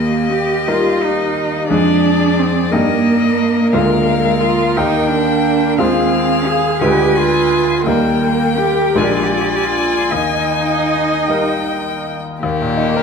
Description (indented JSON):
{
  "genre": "classical, slow romantic movement for piano quartet",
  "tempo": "51-60 BPM (dotted quarters)",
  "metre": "6/8",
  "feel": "rubato",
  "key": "Eb major from 3.7 s",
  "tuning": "A4 = 440 Hz",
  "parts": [
    { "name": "rich violin", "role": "melody", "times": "0.0-13.0 s", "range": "G4 to Ab5", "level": "-21 LUFS", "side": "left 8 dB", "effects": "none" },
    { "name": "rich cello", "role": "second line", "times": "0.0-13.0 s", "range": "Eb3 to Ab4", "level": "-17 LUFS", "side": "right 4 dB", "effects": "none" },
    { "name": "bright concert grand piano", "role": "accompaniment", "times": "0.0-13.0 s", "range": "Bb1 to C5", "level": "-18 LUFS", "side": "left 3 dB", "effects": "none" },
    { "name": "rich viola", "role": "accompaniment", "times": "0.0-13.0 s", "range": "Bb3 to Eb5", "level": "-22 LUFS", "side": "right 1 dB", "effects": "none" }
  ],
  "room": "wet recital hall reverb, RT60 1.4 s",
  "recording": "none",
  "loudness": "-13 LUFS",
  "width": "side -6 dB against mid",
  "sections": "0.0-12.4 A section",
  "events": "none",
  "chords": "0.0 Eb; 1.7 Ddim/F; 2.7 Eb/G; 3.7 Bb7/D; 4.8 Eb; 5.8 Fm7/Eb; 6.8 Ddim7; 7.9 Eb; 9.0 Bb7; 10.1 Eb",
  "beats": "0.67 | 1.71 2.73 | 3.74 4.76 | 5.80 6.82 | 7.87 8.96 | 10.12 11.29 | 12.43"
}